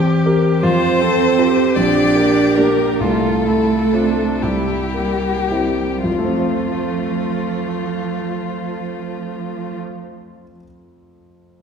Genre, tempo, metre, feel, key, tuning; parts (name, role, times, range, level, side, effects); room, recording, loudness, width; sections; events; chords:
classical, slow romantic movement for piano quartet; 34-54 BPM (dotted quarters); 6/8; rubato; F major; A4 = 441 Hz
rich viola; accompaniment; 0.0-9.8 s; A3 to A4; -24 LUFS; right 1 dB
warm grand piano; accompaniment; 0.0-11.6 s; Bb1 to C5; -19 LUFS; left 1 dB
rich violin; melody; 0.6-9.8 s; F4 to D5; -22 LUFS; left 6 dB
rich cello; second line; 0.6-9.8 s; F3 to D4; -20 LUFS; right 5 dB
wet concert hall reverb, RT60 1.7 s; heard from further back in the room; -15 LUFS; side -6 dB against mid
0.0-6.1 A section; 6.1-9.0 B section
slowing down 0.0-6.1
0.0 C7/E; 0.6 F; 1.8 Gm/Bb; 3.0 F/C; 4.4 C7; 6.1 F